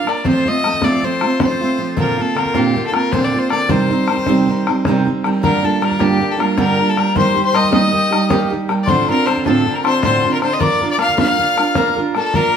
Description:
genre	celtic folk, Celtic slip jig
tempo	104 BPM (dotted quarters)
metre	9/8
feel	straight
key	unclear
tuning	A4 = 441 Hz
part	bright fiddle	melody	0.0-12.6 s	G4 to F5	-19 LUFS	left 3 dB	none
part	picked steel-string acoustic guitar	accompaniment	0.0-12.6 s	D2 to Bb4	-17 LUFS	right 3 dB	none
part	bodhran	percussion	0.1-12.4 s	none	-21 LUFS	left 3 dB	none
part	mellow wooden whistle	second line	5.4-12.6 s	G5 to F6	-21 LUFS	left 7 dB	none
room	wet studio reverb, RT60 0.7 s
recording	band playing live in one room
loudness	-13 LUFS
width	side -7 dB against mid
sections	0.0-5.4 A section; 5.4-12.6 A section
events	none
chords	0.3 F; 2.0 Bbadd9; 3.7 Cm; 5.4 Gm7; 7.2 Eb; 8.9 Dm7; 10.6 Bb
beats	| 0.26 0.83 1.41 | 1.98 2.55 3.13 | 3.70 4.28 4.85 | 5.43 6.00 6.58 | 7.15 7.73 8.31 | 8.88 9.46 10.04 | 10.62 11.19 11.77 | 12.35

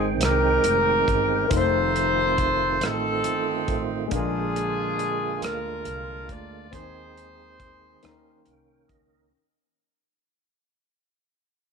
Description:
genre	slow gospel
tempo	46 BPM (dotted quarters)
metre	6/8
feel	straight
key	Ab major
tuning	A4 = 439 Hz
part	clear saxophone section	melody	0.0-8.5 s	C4 to D5	-24 LUFS	left 1 dB	none
part	warm grand piano	accompaniment	0.0-9.3 s	Ab2 to G5	-32 LUFS	left 12 dB	none
part	percussive tonewheel organ	sustained chords	0.0-9.3 s	D3 to G5	-29 LUFS	right 10 dB	slow rotary speaker, overdrive, chorus vibrato
part	upright bass	bass	0.0-9.3 s	F1 to Eb2	-31 LUFS	equal	none
part	warm soul drum kit	drums	0.2-9.1 s	hi-hat, kick drum, rim click	-29 LUFS	equal	none
room	light reverb, small room ambience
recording	1960s-style stereo with parts hard left and right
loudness	-21 LUFS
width	side -6 dB against mid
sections	0.0-9.3 A section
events	fade-out 0.0-9.3; tonewheel organ fill 8.0-9.3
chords	0.0 Abmaj7; 1.5 F7; 4.1 Bb7; 6.7 Ab/Eb; 8.0 Eb5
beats	0.21 | 1.51 2.81 | 4.11 5.41 | 6.72 8.02

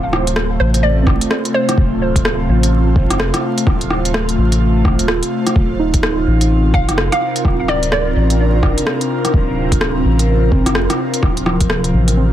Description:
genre	future garage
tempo	127 BPM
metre	4/4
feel	swing 61% on 16ths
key	unclear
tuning	A4 = 444 Hz
part	muted felt-like synth keys	accompaniment	0.0-12.3 s	F3 to F4	-23 LUFS	right 1 dB	chorus, phaser, sidechain pumping, tape echo
part	airy breathy pad	sustained chords	0.0-12.3 s	C3 to C5	-20 LUFS	equal	chorus, phaser, sidechain pumping
part	soft dub sub bass	bass	0.0-12.3 s	D1 to A1	-16 LUFS	equal	sidechain pumping
part	organic electronic drum kit	drums	0.1-12.2 s	hi-hat, rim click	-20 LUFS	equal	overdrive
part	hollow square pluck	melody	0.6-2.0, 6.7-8.6 s	C5 to F5	-21 LUFS	right 1 dB	wide subtle chorus, analog delay
part	electronic kick drum	drums	1.1-11.7 s	none	-16 LUFS	equal	overdrive
room	light reverb, digital ambience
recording	dense, heavily limited modern master, vinyl crackle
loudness	-13 LUFS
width	side -12 dB against mid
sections	0.0-12.3 A section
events	none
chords	0.0 Dm7; 5.6 Fsus4/D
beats	0.36 0.83 1.31 | 1.78 2.25 2.72 3.20 | 3.67 4.14 4.61 5.09 | 5.56 6.03 6.50 6.98 | 7.45 7.92 8.39 8.87 | 9.34 9.81 10.28 10.76 | 11.23 11.70 12.17

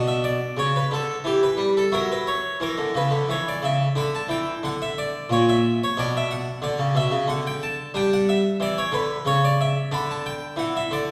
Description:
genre	classical, baroque-style suite movement for harpsichord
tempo	90 BPM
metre	3/4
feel	rubato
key	B minor, D major from 7.9 s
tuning	A4 = 441 Hz
part	harpsichord	solo	0.0-11.1 s	A#2 to B5	-23 LUFS	equal	none
room	wet recital hall reverb, RT60 1.6 s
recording	recorded in a church or concert hall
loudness	-23 LUFS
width	mono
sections	0.0-11.1 A section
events	none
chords	0.0 Bm; 1.2 Em; 1.9 F#5; 4.0 Dsus2; 5.3 N.C.; 6.0 Bm; 7.9 G5; 9.2 N.C.; 9.9 D69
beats	0.57 1.25 | 1.93 2.61 3.29 | 3.96 4.63 5.30 | 5.96 6.62 7.28 | 7.94 8.58 9.24 | 9.91 10.56

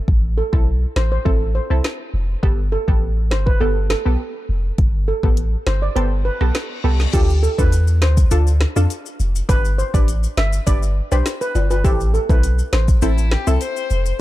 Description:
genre	dancehall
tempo	102 BPM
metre	4/4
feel	straight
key	A minor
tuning	A4 = 441 Hz
part	punchy sub bass	bass	0.1-14.1 s	F1 to F2	-18 LUFS	equal	none
part	afro-pop drum kit	drums	0.1-13.8 s	crash cymbal, hi-hat, kick drum, rim click, snare drum	-18 LUFS	equal	none
part	steel pan	melody	0.4-12.8 s	G4 to E5	-25 LUFS	right 2 dB	ping-pong delay
part	punchy chord stab	accompaniment	0.5-13.6 s	B3 to B4	-26 LUFS	equal	chorus
part	reverse cymbal	sound effects	6.3-7.1 s	none	-34 LUFS	left 7 dB	none
part	maracas and timbales	percussion	7.1-14.2 s	none	-31 LUFS	left 10 dB	none
part	dark violin	second line	13.0-14.1 s	E4 to C5	-25 LUFS	left 6 dB	ping-pong delay
room	little or no reverb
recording	dark, warm production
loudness	-16 LUFS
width	side -16 dB against mid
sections	0.0-7.1 A section; 7.1-14.2 B section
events	kick muted 6.0-7.1; reverse cymbal 6.3-7.1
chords	0.0 Am; 2.4 Gadd9; 7.1 Dm; 9.5 G; 11.8 Am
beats	| 0.08 0.67 1.26 1.85 | 2.43 3.02 3.61 4.20 | 4.79 5.38 5.96 6.55 | 7.14 7.73 8.32 8.90 | 9.49 10.08 10.67 11.26 | 11.85 12.43 13.02 13.61

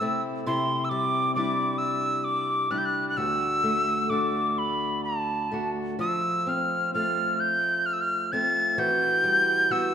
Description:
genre	celtic folk, Celtic slow air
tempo	65 BPM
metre	3/4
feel	rubato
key	unclear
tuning	A4 = 439 Hz
part	mid whistle	melody	0.0-9.9 s	A5 to A6	-24 LUFS	equal	none
part	fingerpicked steel-string acoustic guitar	accompaniment	0.0-9.9 s	D2 to F#4	-29 LUFS	left 1 dB	none
room	wet church reverb, RT60 2.6 s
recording	minimal, uncompressed stereo recording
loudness	-23 LUFS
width	side -8 dB against mid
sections	0.0-9.9 A section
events	none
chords	0.5 Cadd9; 3.2 D; 6.0 F; 8.8 Emadd9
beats	| 0.47 1.37 2.27 | 3.17 4.10 5.04 | 5.99 6.94 7.87 | 8.79 9.71

